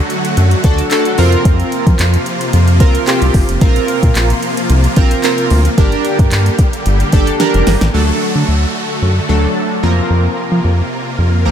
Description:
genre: dance-pop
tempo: 111 BPM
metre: 4/4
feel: straight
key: unclear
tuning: A4 = 440 Hz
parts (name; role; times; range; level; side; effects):
- supersaw chords; sustained chords; 0.0-11.5 s; C3 to Bb4; -19 LUFS; equal; wide subtle chorus, sidechain pumping
- smooth R&B drum kit; drums; 0.1-7.9 s; handclaps, hi-hat, kick drum, snare drum; -14 LUFS; equal; none
- round analog bass; bass; 0.4-11.5 s; F1 to F3; -12 LUFS; equal; sidechain pumping
- chorused retro synth keys; accompaniment; 0.6-11.5 s; F3 to Bb4; -17 LUFS; right 1 dB; sidechain pumping
- downlifter; sound effects; 7.9-11.5 s; none; -26 LUFS; right 1 dB; none
room: light reverb, digital ambience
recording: none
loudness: -10 LUFS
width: side -9 dB against mid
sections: 0.0-7.9 A section; 7.9-11.5 B section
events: drum fill 7.4-7.9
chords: 0.0 D; 1.2 Fsus4; 3.6 Bbsus2; 5.8 Gm; 7.9 D; 9.8 Fsus4

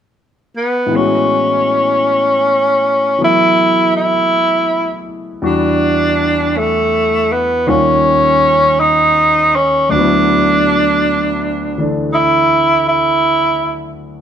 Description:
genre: jazz ballad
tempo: 54 BPM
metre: 4/4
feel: swing 66% on 8ths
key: A major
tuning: A4 = 440 Hz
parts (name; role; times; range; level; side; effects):
- clear tenor saxophone; melody; 0.6-14.0 s; A3 to E4; -12 LUFS; right 1 dB; none
- warm concert grand piano; accompaniment; 0.9-14.2 s; D2 to F#4; -18 LUFS; left 2 dB; none
room: moderate large studio reverb, RT60 1.2 s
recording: none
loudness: -11 LUFS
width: side -8 dB against mid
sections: 0.9-14.2 A section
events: none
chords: 0.0 N.C.; 0.9 Amaj13; 5.5 Em7; 7.7 D#9; 9.9 D69

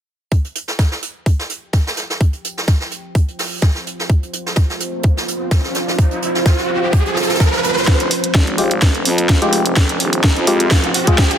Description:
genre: bass house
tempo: 127 BPM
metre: 4/4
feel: swing 54% on 16ths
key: F minor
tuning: A4 = 441 Hz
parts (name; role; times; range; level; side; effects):
- electronic kick drum; drums; 0.3-11.3 s; none; -13 LUFS; equal; overdrive
- jazz brush drum kit; drums; 0.3-7.9 s; hi-hat, snare drum; -23 LUFS; right 2 dB; sidechain pumping on hats, high-pass filter on hats, soft clipping on snare, high-pass filter on snare, high-pass filter on room
- deep dark ambient pad; texture; 2.6-11.4 s; F4 to G5; -23 LUFS; right 2 dB; chorus, built-in reverb, sidechain pumping
- riser; sound effects; 5.0-11.4 s; none; -22 LUFS; right 2 dB; none
- growling FM bass; bass; 7.9-10.9 s; Eb1 to F2; -21 LUFS; left 1 dB; tube saturation, sidechain pumping, high-pass filter
- garage drum kit; drums; 7.9-11.4 s; hi-hat, snare drum; -18 LUFS; equal; overdrive, high-pass filter on snare, high-pass filter on hats
- percussive organ stab; stabs; 8.6-11.2 s; Ab3 to Ab4; -19 LUFS; left 2 dB; lush chorus, sidechain pumping, dub echo
room: light reverb, digital ambience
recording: dense, heavily limited modern master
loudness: -14 LUFS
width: side -9 dB against mid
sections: 0.3-7.9 A section; 7.9-11.4 B section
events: fade-in on ambient pad 0.3-7.9; riser 5.0-7.9, 7.9-11.4; build-up 7.9-11.4; drum fill 7.9-11.4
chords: 0.3 Fsus2; 7.9 Fmadd9

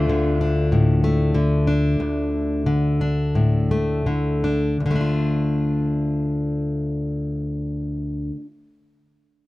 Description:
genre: folk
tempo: 78-98 BPM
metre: 4/4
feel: straight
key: D minor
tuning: A4 = 439 Hz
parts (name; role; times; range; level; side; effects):
- fingerpicked plugged-in steel-string acoustic guitar; accompaniment; 0.0-8.5 s; D2 to F4; -19 LUFS; left 1 dB; none
room: small room reverb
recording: dry, close 1970s-style studio recording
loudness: -19 LUFS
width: side -18 dB against mid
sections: 0.0-4.8 A section; 4.8-7.9 B section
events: slowing down 0.0-4.8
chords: 0.0 Dm

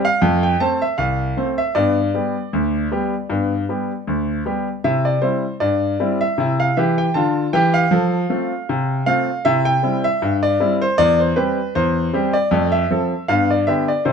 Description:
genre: ragtime piano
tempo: 78 BPM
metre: 2/4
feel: swing 56% on 16ths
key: C major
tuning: A4 = 444 Hz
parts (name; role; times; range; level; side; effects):
- clear grand piano; solo; 0.0-14.1 s; C2 to A5; -16 LUFS; equal; none
room: moderate studio reverb, RT60 0.8 s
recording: dark, warm production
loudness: -16 LUFS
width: side -6 dB against mid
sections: 0.0-14.1 A section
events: none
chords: 0.2 F; 1.8 G; 4.8 C; 7.9 F; 9.5 C; 11.0 C/E; 12.5 F; 13.3 G

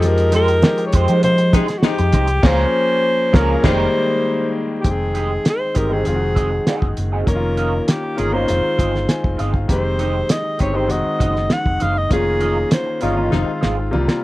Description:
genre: lush 1970s-style soul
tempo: 99 BPM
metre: 4/4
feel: straight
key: F minor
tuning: A4 = 440 Hz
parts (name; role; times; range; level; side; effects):
- breathy alto saxophone; melody; 0.0-14.2 s; F4 to Gb5; -20 LUFS; equal; none
- clear baby grand piano; accompaniment; 0.0-14.2 s; C3 to Ab5; -22 LUFS; left 2 dB; none
- hollow-body short-scale fingered electric bass; bass; 0.0-14.1 s; F1 to F3; -20 LUFS; equal; none
- cloth-damped thuddy drum kit; drums; 0.0-14.2 s; crash cymbal, hi-hat, kick drum, snare drum; -18 LUFS; equal; none
- congas; percussion; 0.0-2.3, 9.7-14.1 s; none; -28 LUFS; right 3 dB; none
- electric guitar through a small old amp; riff; 0.3-14.1 s; Ab3 to F5; -26 LUFS; right 5 dB; wah
- warm horn section; stabs; 1.5-3.8, 12.1-13.5 s; Bb2 to Eb4; -24 LUFS; left 11 dB; none
room: light reverb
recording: dry, close 1970s-style studio recording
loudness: -15 LUFS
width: side -18 dB against mid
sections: 0.0-4.9 A section; 4.9-14.2 B section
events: band accent 2.4-4.9, 12.1-14.2; grand piano fill 8.8-9.7; drum fill 13.3-14.2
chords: 0.0 Fm9; 2.4 Db6; 3.6 Fm11; 4.9 Abmaj7/F; 6.1 Ab7/F; 7.3 Db69/F; 8.5 Fm7; 10.9 Ab7/F; 12.1 Db69/F; 13.3 Fm7

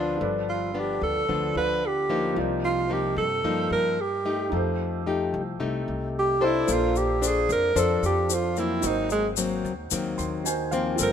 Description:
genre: bossa nova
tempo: 111 BPM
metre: 4/4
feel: straight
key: unclear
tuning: A4 = 440 Hz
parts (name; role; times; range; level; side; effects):
- warm alto saxophone; melody; 0.0-11.1 s; Ab3 to B4; -25 LUFS; right 2 dB; none
- nylon-string guitar; accompaniment; 0.0-11.1 s; G2 to C5; -27 LUFS; left 5 dB; none
- warm concert grand piano; accompaniment; 0.0-11.1 s; Bb3 to C6; -33 LUFS; right 5 dB; none
- upright bass; bass; 0.0-11.1 s; G1 to G2; -33 LUFS; equal; none
- tube shaker; percussion; 6.7-11.1 s; none; -31 LUFS; left 9 dB; none
room: moderate echo chamber reverb, RT60 2.0 s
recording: minimal, uncompressed stereo recording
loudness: -23 LUFS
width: side -8 dB against mid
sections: 0.0-11.1 A section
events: alto saxophone solo 0.0-11.1; grand piano fill 9.9-11.0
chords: 0.2 G7; 2.4 Cm11; 4.5 F9; 6.7 Bbmaj9; 8.8 Ab9

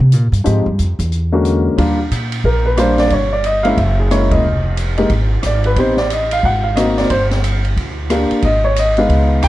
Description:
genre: jazz piano trio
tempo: 181 BPM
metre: 4/4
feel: swing 63% on 8ths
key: Eb major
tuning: A4 = 440 Hz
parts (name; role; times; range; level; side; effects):
- upright bass; bass; 0.0-9.5 s; F1 to C3; -16 LUFS; equal; none
- open jazz drum kit; drums; 0.1-9.5 s; hi-hat, kick drum, ride cymbal, rim click, snare drum; -22 LUFS; right 1 dB; vintage 12-bit sampler grit
- warm baby grand piano; melody; 0.4-9.5 s; D3 to G5; -15 LUFS; left 1 dB; none
room: light reverb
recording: none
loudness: -13 LUFS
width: side -15 dB against mid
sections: 0.0-1.8 A section; 1.8-9.5 B section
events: upright bass solo 0.0-1.8; band accent 4.3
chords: 0.5 Fm7; 1.1 Bb7alt; 1.8 Ebmaj7; 3.1 G(b5, no3); 3.8 Gb9; 4.4 Fm7; 5.8 Am7b5; 6.4 Ab9; 7.1 Gm7; 8.4 Ab5

